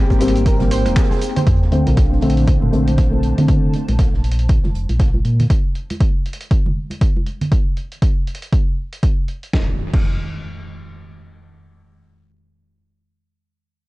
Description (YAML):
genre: deep house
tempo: 119 BPM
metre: 4/4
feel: swing 59% on 16ths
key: Bb major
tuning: A4 = 440 Hz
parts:
  - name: dark analog pad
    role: sustained chords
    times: 0.0-3.5 s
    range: D4 to G5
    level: -31 LUFS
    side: left 1 dB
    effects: wide subtle chorus, sidechain pumping
  - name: warbly dusty pluck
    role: arpeggios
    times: 0.0-3.2 s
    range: Ab4 to C5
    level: -28 LUFS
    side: right 4 dB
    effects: lush chorus, sidechain pumping, tape echo
  - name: sub bass with octave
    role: bass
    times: 0.0-5.5 s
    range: Eb1 to Bb2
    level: -18 LUFS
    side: equal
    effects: sidechain pumping
  - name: airy breathy pad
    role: texture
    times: 0.0-5.5 s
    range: Bb3 to A5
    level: -29 LUFS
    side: left 1 dB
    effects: chorus, sidechain pumping
  - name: dusty soul sampler-style drum kit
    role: drums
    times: 0.1-10.1 s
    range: crash cymbal, finger snaps, hi-hat, shaker, snare drum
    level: -32 LUFS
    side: equal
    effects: vintage 12-bit sampler grit, analog delay
  - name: electronic kick drum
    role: drums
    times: 0.1-10.1 s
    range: none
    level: -16 LUFS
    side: equal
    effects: overdrive, vintage 12-bit sampler grit
  - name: open jazz drum kit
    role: drums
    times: 0.1-5.5 s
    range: hi-hat, snare drum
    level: -39 LUFS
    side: right 2 dB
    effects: none
  - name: felt-muted upright piano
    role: stabs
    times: 0.2-3.7 s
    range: D3 to C4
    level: -20 LUFS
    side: left 1 dB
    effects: sidechain pumping, low-pass filter, tape echo
  - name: congas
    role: percussion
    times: 0.6-7.5 s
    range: none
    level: -25 LUFS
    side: right 2 dB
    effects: none
  - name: sub drop and impact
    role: sound effects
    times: 1.5-3.5, 9.5-12.9 s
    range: none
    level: -24 LUFS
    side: equal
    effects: none
room: studio ambience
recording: echo-heavy mix, cassette tape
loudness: -15 LUFS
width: side -20 dB against mid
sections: 0.0-1.5 A section; 1.5-9.5 B section; 9.5-13.6 C section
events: drop 0.0-1.5; fade-out on analog synth pad 1.5-5.5; impact 1.5-3.5; filter sweep on felt piano 1.5-3.5; filter sweep on synth pluck 1.5-3.5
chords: 0.0 Abmaj9; 1.5 Bbmaj9; 5.5 N.C.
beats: 0.46 0.96 | 1.47 1.97 2.48 2.98 | 3.48 3.99 4.49 5.00 | 5.50 6.00 6.51 7.01 | 7.52 8.02 8.53 9.03 | 9.53 10.04 10.54 11.05 | 11.55 12.05 12.56